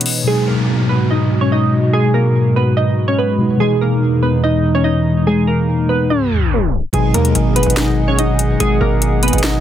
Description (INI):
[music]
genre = hip hop, trap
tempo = 144 BPM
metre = 4/4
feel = half-time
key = G# minor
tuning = A4 = 440 Hz
[part]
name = glassy digital keys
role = melody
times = 0.0-9.6 s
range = G#3 to D#5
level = -18 LUFS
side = right 1 dB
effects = chorus, phaser, low-pass filter
[part]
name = mellow tine electric piano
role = accompaniment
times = 0.0-9.6 s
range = B2 to D#4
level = -17 LUFS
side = left 1 dB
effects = medium stereo tremolo, low-pass filter
[part]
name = hollow soft pad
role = sustained chords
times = 0.0-9.6 s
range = E2 to D#6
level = -19 LUFS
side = equal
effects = chorus
[part]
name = trap drum kit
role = drums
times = 0.0-0.2, 6.9-9.5 s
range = hi-hat, snare drum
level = -19 LUFS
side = left 2 dB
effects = none
[part]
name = downlifter and reverse cymbal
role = sound effects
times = 0.3-6.9 s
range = none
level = -30 LUFS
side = right 1 dB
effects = none
[part]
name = distorted 808-style bass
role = bass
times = 6.9-9.6 s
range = G#1 to D#2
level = -17 LUFS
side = equal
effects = distortion
[sound]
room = digital ambience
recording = dense, heavily limited modern master, tape stop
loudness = -13 LUFS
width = side -10 dB against mid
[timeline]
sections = 0.3-6.9 A section; 6.9-9.6 B section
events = break 0.0; tape stop 6.1-6.9; reverse cymbal 6.2-6.9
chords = 0.3 G#m7; 3.6 Emaj7; 6.9 G#m7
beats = | 0.27 0.69 1.10 1.52 | 1.94 2.35 2.77 3.19 | 3.60 4.02 4.44 4.85 | 5.27 5.69 6.10 6.52 | 6.94 7.35 7.77 8.19 | 8.60 9.02 9.44